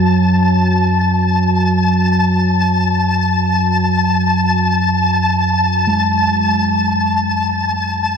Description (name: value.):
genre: dark ambient drone.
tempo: free time.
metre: none.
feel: none.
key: F# minor.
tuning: A4 = 436 Hz.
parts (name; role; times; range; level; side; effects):
deep rumbling drone; drone; 0.0-8.2 s; F#2 to F#3; -15 LUFS; right 1 dB; built-in reverb.
flickering grainy texture; texture; 0.0-8.2 s; A5; -16 LUFS; left 2 dB; built-in reverb.
gamelan-type bossed gongs; arpeggios; 5.9-8.2 s; G#3; -21 LUFS; right 1 dB; diffuse ambient delay.
room: wet huge ambient reverb, RT60 7.8 s.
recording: none.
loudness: -12 LUFS.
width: side -6 dB against mid.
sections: 0.0-8.2 A section.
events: fade-out 5.7-8.2.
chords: 0.0 F#m.